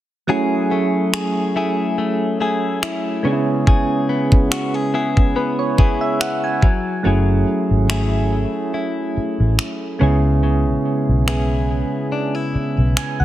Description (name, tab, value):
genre	contemporary R&B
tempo	71 BPM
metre	4/4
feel	swing 54% on 16ths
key	F# minor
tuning	A4 = 440 Hz
part	soft electric-piano-like synth keys	accompaniment	0.3-13.2 s	F#3 to G#5	-20 LUFS	right 3 dB	chorus, tremolo
part	direct-recorded clean electric guitar	arpeggios	0.3-13.2 s	C#3 to G#4	-22 LUFS	left 4 dB	digital delay
part	trap drum kit	drums	1.1-13.2 s	finger snaps, kick drum	-18 LUFS	equal	soft clipping on snare
part	vintage muted fingered electric bass	bass	7.1-13.2 s	F#1 to C#2	-17 LUFS	equal	none
room	light reverb, digital ambience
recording	dense, heavily limited modern master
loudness	-16 LUFS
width	side -14 dB against mid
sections	0.3-7.1 A section; 7.1-13.2 B section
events	kick muted 7.1-13.2; synth keys fill 12.5-13.2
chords	0.3 F#m9; 3.2 C#m7; 6.6 N.C.; 7.1 F#m9; 10.0 C#m7